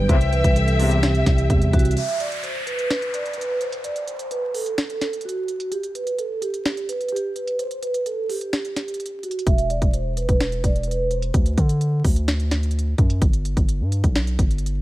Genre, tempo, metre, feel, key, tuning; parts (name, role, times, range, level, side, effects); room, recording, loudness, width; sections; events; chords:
hip hop, trap; 128 BPM; 4/4; half-time; E minor; A4 = 443 Hz
vibraphone with soft mallets; melody; 0.0-11.3 s; F#4 to E5; -25 LUFS; right 2 dB; low-pass filter, tape echo
mellow tine electric piano; accompaniment; 0.0-2.0 s; G2 to C4; -22 LUFS; equal; low-pass filter
warm symphonic string section; sustained chords; 0.0-1.9 s; E3 to G5; -30 LUFS; left 1 dB
long sustained 808-style bass; bass; 0.0-2.0, 9.5-14.8 s; E1 to D3; -22 LUFS; equal
warm studio violin section; second line; 0.1-1.9 s; E5; -27 LUFS; left 2 dB; tape echo
warm brass ensemble; stabs; 0.1-1.1 s; E2 to C3; -28 LUFS; left 4 dB
trap drum kit; drums; 0.1-14.7 s; hi-hat, kick drum, snare drum; -22 LUFS; equal
downlifter; sound effects; 2.0-5.7 s; -32 LUFS; left 1 dB
small room ambience; vinyl crackle; -20 LUFS; side -16 dB against mid
0.0-2.0 A section; 2.0-14.8 B section
break 2.0-9.5
0.1 C; 2.0 N.C.; 9.5 E5; 11.3 N.C.; 13.2 G